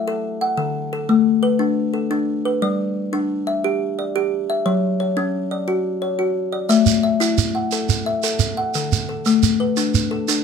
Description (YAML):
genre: southern african traditional, mbira-style interlocking cycle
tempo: 118 BPM (dotted quarters)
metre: 12/8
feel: straight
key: unclear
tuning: A4 = 443 Hz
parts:
  - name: kalimba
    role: arpeggios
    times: 0.0-10.4 s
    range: D3 to F#5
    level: -18 LUFS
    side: left 3 dB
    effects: none
  - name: shekere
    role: percussion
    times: 6.7-10.4 s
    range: none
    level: -21 LUFS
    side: right 8 dB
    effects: none
room: moderate studio reverb, RT60 0.5 s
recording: none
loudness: -18 LUFS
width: side -6 dB against mid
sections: 0.0-10.4 A section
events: none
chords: 0.0 A5; 0.6 D5; 2.6 G5; 4.7 F#5; 6.7 A5; 8.7 D5